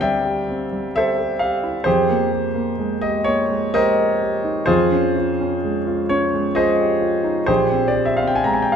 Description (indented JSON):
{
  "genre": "classical, impressionist solo piano",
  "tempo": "64 BPM",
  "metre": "3/4",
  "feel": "rubato",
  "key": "unclear",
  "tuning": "A4 = 443 Hz",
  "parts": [
    { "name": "warm grand piano", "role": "solo", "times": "0.0-8.8 s", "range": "Bb1 to Bb5", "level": "-17 LUFS", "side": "equal", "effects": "none" }
  ],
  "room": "wet recital hall reverb, RT60 1.6 s",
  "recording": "none",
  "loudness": "-17 LUFS",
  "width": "side -7 dB against mid",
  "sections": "0.0-8.8 A section",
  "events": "none",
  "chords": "0.0 Dm11; 1.9 Fm11; 4.7 Dbmaj9/F; 7.5 Bbsus2"
}